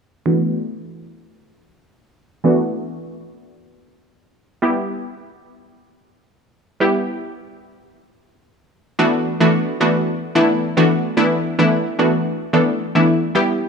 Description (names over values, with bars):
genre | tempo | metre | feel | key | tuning
pop | 110 BPM | 4/4 | straight | unclear | A4 = 440 Hz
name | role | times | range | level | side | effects
analog pluck | accompaniment | 0.3-13.6 s | E3 to A4 | -16 LUFS | equal | chorus, low-pass filter
room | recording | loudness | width
moderate lush hall reverb, RT60 2.4 s | small room ambience | -16 LUFS | side -5 dB against mid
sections
0.3-9.0 A section; 9.0-13.7 B section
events
filter sweep on synth pluck 0.3-9.0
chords
0.3 Bm7/E; 4.6 Em; 9.0 Bm7/E